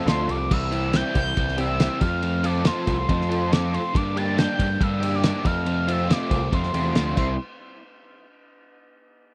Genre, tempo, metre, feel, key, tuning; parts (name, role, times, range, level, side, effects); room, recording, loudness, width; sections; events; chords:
indie rock; 140 BPM; 4/4; straight; A4 = 440 Hz
expressive synth lead; melody; 0.0-7.4 s; C6 to A6; -31 LUFS; equal; chorus
crunchy overdriven guitar; riff; 0.0-7.3 s; F3 to A4; -33 LUFS; equal; ensemble chorus
overdriven electric guitar; riff; 0.0-7.3 s; F2 to F4; -32 LUFS; equal
growling picked electric bass; bass; 0.1-7.4 s; C2 to G2; -28 LUFS; equal; overdrive
cloth-damped thuddy drum kit; drums; 0.1-7.3 s; crash cymbal, kick drum, ride cymbal, snare drum; -28 LUFS; equal
little or no reverb; dry, close 1970s-style studio recording; -23 LUFS; mono
0.0-7.4 A section; 7.4-9.1 B section
0.0 F; 0.5 C; 2.0 F; 3.9 Gm; 5.4 Fmaj7; 7.2 C; 7.4 N.C.